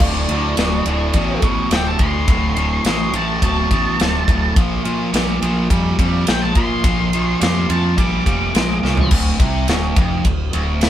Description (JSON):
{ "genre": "blues rock power trio and southern rock", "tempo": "106 BPM", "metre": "4/4", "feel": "straight", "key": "D minor", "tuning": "A4 = 440 Hz", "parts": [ { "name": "octave-fuzz lead guitar", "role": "melody", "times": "0.0-9.1 s", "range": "D4 to D6", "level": "-23 LUFS", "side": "equal", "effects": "distortion" }, { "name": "biting overdriven guitar", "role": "riff", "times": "0.0-10.9 s", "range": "D2 to G#3", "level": "-21 LUFS", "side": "right 1 dB", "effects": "none" }, { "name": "fuzz fingered electric bass", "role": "bass", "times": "0.0-10.9 s", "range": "D1 to Bb2", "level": "-20 LUFS", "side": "equal", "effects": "overdrive" }, { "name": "big rock drum kit", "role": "drums", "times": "0.0-10.9 s", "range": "crash cymbal, kick drum, ride cymbal, snare drum, toms", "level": "-19 LUFS", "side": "equal", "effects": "none" } ], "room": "light reverb", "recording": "band playing live in one room", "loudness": "-15 LUFS", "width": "side -11 dB against mid", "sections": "0.0-9.1 A section; 9.1-10.9 B section", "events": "lead electric guitar solo 0.0-9.1; drum fill 8.8", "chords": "0.0 D5; 4.6 Bb; 9.1 Dm" }